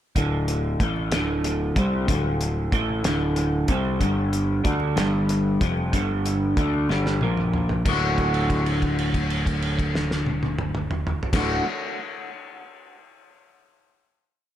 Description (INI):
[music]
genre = psychedelic rock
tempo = 62 BPM (dotted quarters)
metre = 6/8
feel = straight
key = D mixolydian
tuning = A4 = 440 Hz
[part]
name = electric guitar through a small old amp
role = riff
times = 0.2-11.6 s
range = D2 to F#4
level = -24 LUFS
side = equal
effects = rotary speaker, dub echo
[part]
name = picked electric bass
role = bass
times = 0.2-11.6 s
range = D1 to D2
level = -27 LUFS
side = equal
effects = none
[part]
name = cloth-damped thuddy drum kit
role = drums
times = 0.2-11.5 s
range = crash cymbal, hi-hat, kick drum, snare drum, toms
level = -27 LUFS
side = equal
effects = none
[part]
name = congas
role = percussion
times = 0.2-8.2 s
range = none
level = barely audible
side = none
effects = none
[sound]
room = light reverb, studio reverb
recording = echo-heavy mix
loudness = -21 LUFS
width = side -11 dB against mid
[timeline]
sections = 0.2-7.9 riff; 7.9-11.7 final chord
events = drum fill 6.9-7.9; held note 7.9-11.3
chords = 0.2 D5; 4.0 G5; 7.2 Bb5; 7.9 D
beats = | 0.16 1.12 | 2.08 3.04 | 4.00 4.96 | 5.93 6.89 | 7.86 8.82 | 9.79 10.75